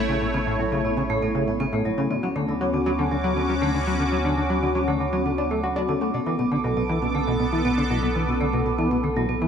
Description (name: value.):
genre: ambient, sequencer-driven space music.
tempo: 119 BPM.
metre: 4/4.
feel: straight.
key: B minor.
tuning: A4 = 440 Hz.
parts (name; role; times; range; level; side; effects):
sweeping resonant pad; sustained chords; 0.0-9.5 s; A3 to D6; -25 LUFS; equal; chorus.
vibraphone with medium hard mallets; arpeggios; 0.0-9.5 s; F#3 to C#4; -29 LUFS; moving between left 3 dB and right 4 dB; auto-pan, ping-pong delay.
warm sub bass; bass; 0.0-9.5 s; A1 to D2; -31 LUFS; equal; none.
plucky analog bass; riff; 0.1-9.5 s; A2 to F#4; -26 LUFS; equal; lush chorus, ping-pong delay.
room: wet plate reverb, RT60 3.6 s.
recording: echo-heavy mix.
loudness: -21 LUFS.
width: side -7 dB against mid.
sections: 0.0-6.1 A section; 6.1-9.5 B section.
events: none.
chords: 0.0 A; 2.1 Dmaj7; 6.1 Bm7.